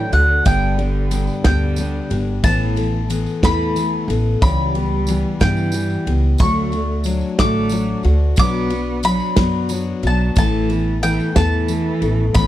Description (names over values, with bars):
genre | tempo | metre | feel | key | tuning
indie folk with a building arrangement | 60 BPM (dotted quarters) | 6/8 | straight | unclear | A4 = 437 Hz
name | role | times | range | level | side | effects
mandolin | melody | 0.0-12.5 s | F#5 to D6 | -23 LUFS | equal | none
warm cello | second line | 0.0-12.5 s | D3 to B3 | -25 LUFS | right 4 dB | none
picked steel-string acoustic guitar | accompaniment | 0.0-12.5 s | G2 to A4 | -22 LUFS | left 5 dB | none
upright bass | bass | 0.1-12.5 s | G1 to G2 | -20 LUFS | equal | none
natural country drum kit | drums | 0.1-12.5 s | kick drum, ride cymbal, snare drum | -18 LUFS | right 1 dB | none
tambourine | percussion | 0.1-12.5 s | none | -36 LUFS | right 9 dB | none
room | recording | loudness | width
little or no reverb | dry, close 1970s-style studio recording | -15 LUFS | side -13 dB against mid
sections
0.0-12.5 A section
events
none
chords
0.5 G; 2.4 Asus2; 4.4 C#m7b5; 6.4 D; 8.4 Bm; 10.4 Asus2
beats
| 0.46 1.45 | 2.44 3.43 | 4.42 5.41 | 6.40 7.39 | 8.39 9.38 | 10.37 11.36 | 12.36